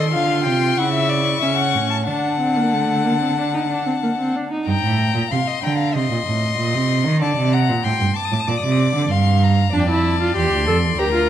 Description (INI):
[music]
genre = classical, baroque-style fugue for string quartet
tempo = 94 BPM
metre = 4/4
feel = straight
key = unclear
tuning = A4 = 440 Hz
[part]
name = rich violin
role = melody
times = 0.0-11.3 s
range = G5 to Eb6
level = -25 LUFS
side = left 11 dB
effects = none
[part]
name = warm violin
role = second line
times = 0.0-11.3 s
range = Bb4 to A5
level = -23 LUFS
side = left 4 dB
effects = none
[part]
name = warm viola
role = accompaniment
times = 0.0-4.7, 9.7-11.3 s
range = A3 to A4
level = -22 LUFS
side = right 1 dB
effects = none
[part]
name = rich cello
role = bass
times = 0.0-11.3 s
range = D2 to Eb3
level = -20 LUFS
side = right 3 dB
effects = none
[sound]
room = moderate recital hall reverb, RT60 1.7 s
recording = none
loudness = -16 LUFS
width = side -10 dB against mid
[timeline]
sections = 0.0-4.7 A section; 4.7-11.3 B section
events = none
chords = 0.0 Adim; 0.8 A6; 2.1 D; 4.7 Gm; 5.9 Cm; 7.2 D7; 8.5 Gm; 9.7 Dm/F